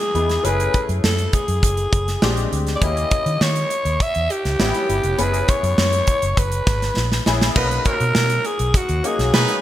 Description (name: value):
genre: polished 1980s jazz-funk pop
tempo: 101 BPM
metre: 4/4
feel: straight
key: B major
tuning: A4 = 439 Hz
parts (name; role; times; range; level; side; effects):
- growling alto saxophone; melody; 0.0-9.6 s; F#4 to E5; -22 LUFS; equal; none
- bright grand piano; accompaniment; 0.0-9.6 s; G#3 to G#4; -27 LUFS; left 4 dB; analog chorus
- modern studio drum kit; drums; 0.0-9.6 s; crash cymbal, hi-hat, kick drum, snare drum; -21 LUFS; right 1 dB; gated reverb
- vintage muted fingered electric bass; bass; 0.1-9.4 s; E#1 to D#3; -22 LUFS; equal; none
- clear horn section; second line; 7.6-9.6 s; F#3 to D#5; -25 LUFS; right 2 dB; ping-pong delay
room: light reverb, small room ambience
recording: bright 1980s-style digital production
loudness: -17 LUFS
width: side -13 dB against mid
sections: 0.0-7.6 A section; 7.6-9.6 B section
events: drum fill 7.0-7.6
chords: 0.4 F#m9; 2.2 A#13; 2.8 D#7b9; 4.6 A9; 5.2 F#7sus4; 7.6 Bmaj7